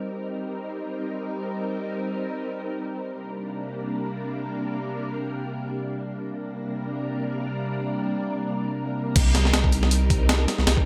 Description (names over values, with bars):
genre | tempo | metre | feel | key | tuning
drum and bass, jungle | free time | none | none | C minor | A4 = 440 Hz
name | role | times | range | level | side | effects
soft string machine | sustained chords | 0.0-10.9 s | C3 to Bb4 | -30 LUFS | equal | ensemble chorus, vintage 12-bit sampler grit
saturated sub bass | bass | 9.2-10.9 s | C2 | -24 LUFS | equal | none
breakbeat sampler-style drum kit | drums | 9.2-10.9 s | crash cymbal, hi-hat, kick drum, snare drum | -23 LUFS | equal | small room ambience
room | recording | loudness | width
light reverb | none | -27 LUFS | mono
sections
0.0-9.2 A section; 9.2-10.9 B section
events
drop 9.2-10.9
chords
0.0 Cm7; 3.1 Gm/C; 9.2 Cm7